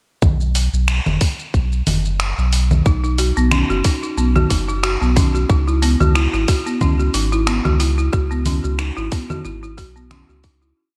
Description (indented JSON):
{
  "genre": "organic downtempo",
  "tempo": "91 BPM",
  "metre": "4/4",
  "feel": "swing 55% on 16ths",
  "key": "C# minor",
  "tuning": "A4 = 440 Hz",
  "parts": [
    { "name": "warm sub bass", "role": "bass", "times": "0.2-10.7 s", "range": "F#1 to C#2", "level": "-20 LUFS", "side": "equal", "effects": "tube saturation, sidechain pumping" },
    { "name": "dusty soul sampler-style drum kit", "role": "drums", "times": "0.2-10.7 s", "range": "congas, finger snaps, hi-hat, shaker", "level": "-24 LUFS", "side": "equal", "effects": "gated reverb" },
    { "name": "electronic kick drum", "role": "drums", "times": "0.2-10.6 s", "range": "none", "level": "-19 LUFS", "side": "equal", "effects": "overdrive" },
    { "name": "folk marimba with medium hard mallets", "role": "arpeggios", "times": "2.9-10.8 s", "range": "B3 to F#4", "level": "-24 LUFS", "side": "equal", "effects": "delay" }
  ],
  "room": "light reverb",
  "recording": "bright 1980s-style digital production",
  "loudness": "-18 LUFS",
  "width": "mono",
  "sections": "0.2-10.8 groove",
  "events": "fade-out 7.3-10.8",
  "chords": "0.2 B; 5.5 C#m11",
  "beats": "| 0.22 0.88 1.54 2.20 | 2.86 3.52 4.18 4.84 | 5.50 6.16 6.81 7.47 | 8.13 8.79 9.45 10.11"
}